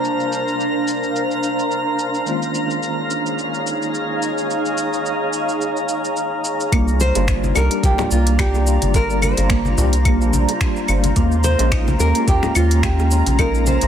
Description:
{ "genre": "sunset chillout", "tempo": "108 BPM", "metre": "4/4", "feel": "swing 56% on 16ths", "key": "C phrygian", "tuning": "A4 = 438 Hz", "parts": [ { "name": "tine electric piano", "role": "accompaniment", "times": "0.0-13.9 s", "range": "C3 to G4", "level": "-25 LUFS", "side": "moving between left 6 dB and right 4 dB", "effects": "overdrive, medium stereo tremolo, auto-pan, tape echo" }, { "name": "shimmering ambient pad", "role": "sustained chords", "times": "0.0-13.9 s", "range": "Db4 to Bb5", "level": "-22 LUFS", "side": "right 1 dB", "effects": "chorus, built-in reverb" }, { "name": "smooth R&B drum kit", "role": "drums", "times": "0.0-13.9 s", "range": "claves, finger snaps, hi-hat, shaker", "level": "-26 LUFS", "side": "left 1 dB", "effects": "low-pass filter on perc, soft clipping on snare, low-pass filter on snare, low-pass filter on hats" }, { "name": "drifting glass-harmonics texture", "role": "texture", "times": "0.0-6.7 s", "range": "Bb5 to Bb6", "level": "-26 LUFS", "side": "right 1 dB", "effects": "chorus, built-in reverb" }, { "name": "mellow electric guitar", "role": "arpeggios", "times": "6.7-13.6 s", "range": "Bb3 to F4", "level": "-27 LUFS", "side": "right 6 dB", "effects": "phaser, tape echo" }, { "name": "round analog bass", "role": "bass", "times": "6.7-13.9 s", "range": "G1 to Eb2", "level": "-18 LUFS", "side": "equal", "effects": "tube saturation" }, { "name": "electronic kick drum", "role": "drums", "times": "6.7-13.5 s", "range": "none", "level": "-19 LUFS", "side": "equal", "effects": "none" }, { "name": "nylon-string guitar", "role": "melody", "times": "7.0-13.9 s", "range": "F4 to C5", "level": "-23 LUFS", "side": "equal", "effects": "tape echo" }, { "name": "congas and bongos", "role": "percussion", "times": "7.0-13.9 s", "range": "none", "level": "-27 LUFS", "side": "left 3 dB", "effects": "none" } ], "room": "moderate plate reverb, RT60 1.9 s", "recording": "dense, heavily limited modern master", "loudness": "-16 LUFS", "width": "side -9 dB against mid", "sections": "0.0-6.7 A section; 6.7-13.9 B section", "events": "none", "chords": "0.0 C9sus4; 2.3 Eb9sus4; 6.7 C9sus4; 11.2 Eb9sus4" }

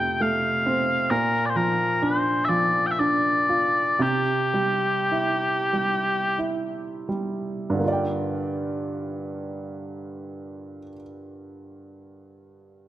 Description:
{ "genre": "celtic folk, Celtic slow air", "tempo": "39-67 BPM", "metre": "3/4", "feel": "rubato", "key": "G dorian", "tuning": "A4 = 440 Hz", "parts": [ { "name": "mellow small bagpipes", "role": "melody", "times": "0.0-6.4 s", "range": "G4 to G5", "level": "-22 LUFS", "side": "left 1 dB", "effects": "none" }, { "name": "warm upright piano", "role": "accompaniment", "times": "0.0-12.9 s", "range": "F2 to G5", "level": "-26 LUFS", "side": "right 2 dB", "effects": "none" } ], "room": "moderate recital hall reverb, RT60 1.7 s", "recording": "none", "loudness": "-21 LUFS", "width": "side -13 dB against mid", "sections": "0.0-7.8 A section; 7.8-12.2 B section", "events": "slowing down 1.1-7.8", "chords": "0.0 F; 1.1 Bb; 4.0 C; 7.8 Gm7" }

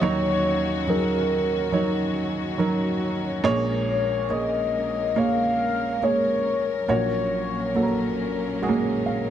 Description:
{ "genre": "pop", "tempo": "70 BPM", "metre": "4/4", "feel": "straight", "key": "Eb minor", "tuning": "A4 = 441 Hz", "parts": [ { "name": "mellow horn-like synth lead", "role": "melody", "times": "0.0-8.6 s", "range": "Bb4 to F5", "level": "-25 LUFS", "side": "left 2 dB", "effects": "chorus" }, { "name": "dark upright piano", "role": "accompaniment", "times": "0.0-9.3 s", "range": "Bb1 to F5", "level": "-24 LUFS", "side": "right 2 dB", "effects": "none" }, { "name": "warm studio string section", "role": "sustained chords", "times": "0.0-9.3 s", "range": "Bb2 to Bb4", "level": "-30 LUFS", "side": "left 4 dB", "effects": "none" } ], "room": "light reverb, studio reverb", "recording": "none", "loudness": "-21 LUFS", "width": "side -10 dB against mid", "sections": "0.0-9.3 A section", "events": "upright piano fill 8.6-9.3", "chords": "0.0 Ebm7; 3.4 Bbm7; 6.9 Gb/Bb" }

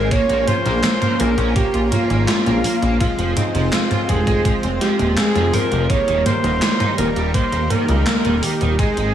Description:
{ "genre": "synthwave", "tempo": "83 BPM", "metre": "4/4", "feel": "straight", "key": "unclear", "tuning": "A4 = 440 Hz", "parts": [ { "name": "mellow alto saxophone", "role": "melody", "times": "0.0-9.1 s", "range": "Eb4 to Db5", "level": "-22 LUFS", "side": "equal", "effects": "tape echo" }, { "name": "warm analog pad", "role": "sustained chords", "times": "0.0-9.1 s", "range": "Eb3 to Db4", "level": "-25 LUFS", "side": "equal", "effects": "chorus, sidechain pumping" }, { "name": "crunchy overdriven guitar", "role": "riff", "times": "0.0-9.1 s", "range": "Eb3 to Bb4", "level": "-26 LUFS", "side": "right 2 dB", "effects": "ensemble chorus, digital delay" }, { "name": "analog synth brass", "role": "stabs", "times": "0.0-9.1 s", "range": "G3 to Db5", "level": "-25 LUFS", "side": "right 3 dB", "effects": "chorus, cassette tape" }, { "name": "chorused synth bass", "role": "bass", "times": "0.0-9.1 s", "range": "Eb1 to Db2", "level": "-20 LUFS", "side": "equal", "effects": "sidechain pumping" }, { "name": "electronic kick drum", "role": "drums", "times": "0.1-8.9 s", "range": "none", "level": "-20 LUFS", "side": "equal", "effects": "none" }, { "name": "gated 80s digital drum machine", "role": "drums", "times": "0.1-9.1 s", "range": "handclaps, hi-hat, snare drum, toms", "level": "-22 LUFS", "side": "equal", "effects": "gated reverb, gated reverb snare" } ], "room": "light reverb", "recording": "studio ambience", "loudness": "-15 LUFS", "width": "side -10 dB against mid", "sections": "0.0-9.1 A section", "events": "none", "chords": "0.1 Bbm; 3.0 Fm; 5.9 Eb" }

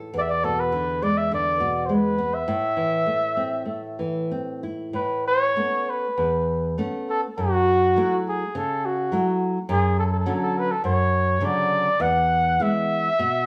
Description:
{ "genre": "fado-style ballad", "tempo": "91-105 BPM", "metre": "4/4", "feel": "rubato", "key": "A harmonic minor, A major from 4.9 s", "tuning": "A4 = 440 Hz", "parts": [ { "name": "nylon-string guitar", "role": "accompaniment", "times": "0.0-13.5 s", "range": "E2 to A4", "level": "-27 LUFS", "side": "equal", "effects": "none" }, { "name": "warm flugelhorn", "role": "melody", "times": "0.2-13.5 s", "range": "F#4 to F#5", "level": "-25 LUFS", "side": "equal", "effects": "plate reverb" } ], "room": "moderate studio reverb, RT60 0.6 s", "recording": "small room ambience", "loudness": "-23 LUFS", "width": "mono", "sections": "0.0-4.9 A section; 4.9-13.5 B section", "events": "none", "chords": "0.1 E7; 2.5 Am; 4.9 Aadd9; 7.4 F#m7; 9.7 Dmaj7/F#; 12.0 E" }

